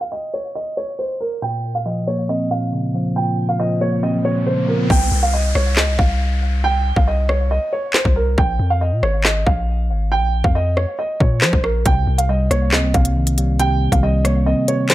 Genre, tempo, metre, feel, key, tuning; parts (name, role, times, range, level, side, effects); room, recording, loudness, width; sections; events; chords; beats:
hip hop, drill; 138 BPM; 4/4; half-time; C phrygian; A4 = 440 Hz
dark grand piano; melody; 0.0-14.9 s; Bb4 to G5; -22 LUFS; right 2 dB; ping-pong delay
mellow tine electric piano; accompaniment; 1.4-4.9, 11.9-14.9 s; Bb2 to C4; -19 LUFS; equal
riser and downlifter; sound effects; 4.0-8.4 s; -28 LUFS; left 1 dB
long sustained 808-style bass; bass; 4.9-14.5 s; Ab1 to F3; -18 LUFS; equal
drill drum kit; drums; 4.9-14.9 s; handclaps, hi-hat, kick drum, rim click, snare drum; -17 LUFS; equal
little or no reverb; low-pass filter; -16 LUFS; side -15 dB against mid
0.0-4.9 A section; 4.9-14.9 B section
filter sweep 0.0-4.9; riser 4.0-4.9; hi-hats muted 4.9-11.9
0.0 N.C.; 1.4 Bbmadd9; 4.9 Cmadd11; 8.4 Bb5; 11.9 Cm7
0.12 0.55 0.99 | 1.42 1.86 2.29 2.73 | 3.16 3.60 4.03 4.46 | 4.90 5.33 5.77 6.21 | 6.64 7.07 7.51 7.94 | 8.38 8.81 9.25 9.68 | 10.12 10.55 10.99 11.42 | 11.86 12.29 12.73 13.16 | 13.60 14.03 14.46 14.90